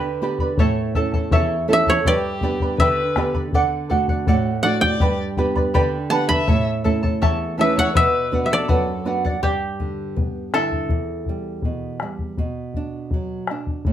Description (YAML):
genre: andean folk, Andean ensemble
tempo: 81 BPM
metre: 2/4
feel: straight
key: unclear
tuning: A4 = 440 Hz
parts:
  - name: koto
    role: melody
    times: 0.0-10.1 s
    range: B4 to B5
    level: -20 LUFS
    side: equal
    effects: plate reverb
  - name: charango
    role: accompaniment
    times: 0.0-12.0 s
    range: E4 to B5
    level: -24 LUFS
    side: right 1 dB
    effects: none
  - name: nylon-string guitar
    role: accompaniment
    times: 0.0-13.9 s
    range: E2 to A4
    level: -24 LUFS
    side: right 3 dB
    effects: none
  - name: bombo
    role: percussion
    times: 0.4-13.9 s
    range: none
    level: -22 LUFS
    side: left 2 dB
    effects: none
  - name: dark violin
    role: second line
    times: 2.1-9.0 s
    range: G4 to F#5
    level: -26 LUFS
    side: left 3 dB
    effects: none
room: moderate studio reverb, RT60 0.6 s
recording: none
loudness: -18 LUFS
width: side -10 dB against mid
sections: 0.0-9.4 A section; 9.4-13.9 B section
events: charango solo 9.4-13.9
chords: 0.0 G; 0.6 A; 2.1 G; 3.5 D; 5.0 G; 6.5 A; 8.0 Bm; 9.4 G; 10.9 Em; 12.4 Bm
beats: | 0.60 1.33 | 2.07 2.80 | 3.54 4.28 | 5.01 5.75 | 6.48 7.22 | 7.96 8.69 | 9.43 10.17 | 10.91 11.65 | 12.39 13.13 | 13.87